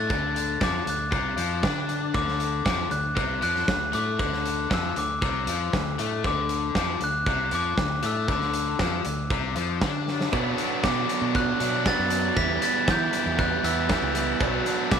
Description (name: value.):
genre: indie rock.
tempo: 117 BPM.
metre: 4/4.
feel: straight.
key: D major.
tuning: A4 = 438 Hz.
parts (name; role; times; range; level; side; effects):
glockenspiel with hard plastic mallets; melody; 0.0-15.0 s; D6 to B6; -28 LUFS; left 1 dB; slapback echo.
raw garage guitar; riff; 0.0-15.0 s; C3 to G4; -29 LUFS; left 11 dB; overdrive.
fingered electric bass; bass; 0.0-15.0 s; B1 to E3; -31 LUFS; right 2 dB; none.
big rock drum kit; drums; 0.1-15.0 s; hi-hat, kick drum, snare drum; -28 LUFS; right 1 dB; none.
overdriven electric guitar; riff; 10.3-15.0 s; B2 to E4; -28 LUFS; right 15 dB; lush chorus, slapback echo.
room: moderate spring reverb, RT60 1.2 s, studio ambience.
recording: 1960s-style stereo with parts hard left and right.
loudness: -23 LUFS.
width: side -7 dB against mid.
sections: 0.0-10.3 A section; 10.3-15.0 B section.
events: drum fill 10.1.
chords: 0.0 D; 10.3 Bm; 12.4 Em; 14.4 Bm.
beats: | 0.10 0.62 1.13 1.64 | 2.15 2.66 3.17 3.69 | 4.20 4.71 5.22 5.73 | 6.24 6.75 7.27 7.78 | 8.29 8.80 9.31 9.82 | 10.33 10.84 11.35 11.86 | 12.37 12.88 13.39 13.90 | 14.41 14.91.